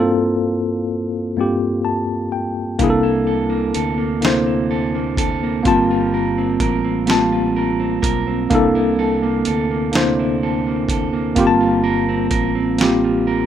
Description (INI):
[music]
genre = slow six-eight R&B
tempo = 42 BPM (dotted quarters)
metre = 6/8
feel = straight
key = G dorian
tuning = A4 = 441 Hz
[part]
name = mellow tine electric piano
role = accompaniment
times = 0.0-13.5 s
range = G2 to A5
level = -17 LUFS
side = left 2 dB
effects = medium stereo tremolo
[part]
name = electric guitar at the edge of break-up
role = second line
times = 2.8-13.5 s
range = C3 to Bb4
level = -22 LUFS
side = right 9 dB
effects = spring reverb
[part]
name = fingered electric bass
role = bass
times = 2.8-13.5 s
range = G1 to D2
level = -25 LUFS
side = right 1 dB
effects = none
[part]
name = dusty soul sampler-style drum kit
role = drums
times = 2.8-13.0 s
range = hi-hat, kick drum, snare drum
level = -22 LUFS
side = right 1 dB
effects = none
[sound]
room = light reverb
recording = rough home demo mix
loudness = -16 LUFS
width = side -10 dB against mid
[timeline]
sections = 0.0-13.5 A section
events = tine electric piano fill 1.4-2.8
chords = 0.0 Gm11; 2.8 C13; 5.7 Gm11; 8.5 C13; 11.4 Gm11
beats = 1.37 | 2.79 4.22 | 5.65 7.08 | 8.51 9.94 | 11.37 12.79